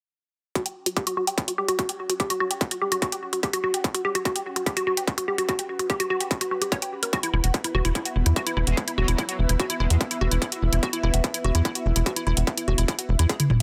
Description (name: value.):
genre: psychedelic trance.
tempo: 146 BPM.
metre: 4/4.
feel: straight.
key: unclear.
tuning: A4 = 443 Hz.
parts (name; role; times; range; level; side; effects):
woody wave-folded pluck; riff; 0.6-13.5 s; E4 to G5; -30 LUFS; equal; chorus, sidechain pumping, tape echo.
electronic kick drum; drums; 0.6-13.4 s; none; -29 LUFS; equal; distortion, overdrive, high-pass filter on kick.
techno drum kit; drums; 0.6-13.6 s; hi-hat, toms; -29 LUFS; equal; overdrive.
airy breathy pad; texture; 1.3-13.6 s; B3 to F#5; -38 LUFS; equal; chorus, phaser, sidechain pumping.
tight sequencer bass; bass; 7.3-13.6 s; E1 to E2; -24 LUFS; equal; tube saturation.
metallic wobble bass; second line; 8.7-10.0 s; F#3 to G#3; -40 LUFS; equal; lush chorus, sidechain pumping, high-pass filter, tape echo.
room: digital ambience.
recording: dense, heavily limited modern master.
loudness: -25 LUFS.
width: mono.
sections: 0.6-13.6 A section.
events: fade-in on analog synth pad 0.6-13.6; filter sweep on synth arpeggio sound 0.6-13.6; drum fill 13.4.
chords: 0.6 F#5; 7.1 E5.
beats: | 0.56 0.97 1.38 1.79 | 2.20 2.61 3.02 3.43 | 3.84 4.25 4.66 5.08 | 5.49 5.90 6.31 6.72 | 7.13 7.54 7.95 8.36 | 8.77 9.19 9.60 10.01 | 10.42 10.83 11.24 11.65 | 12.06 12.47 12.88 13.29.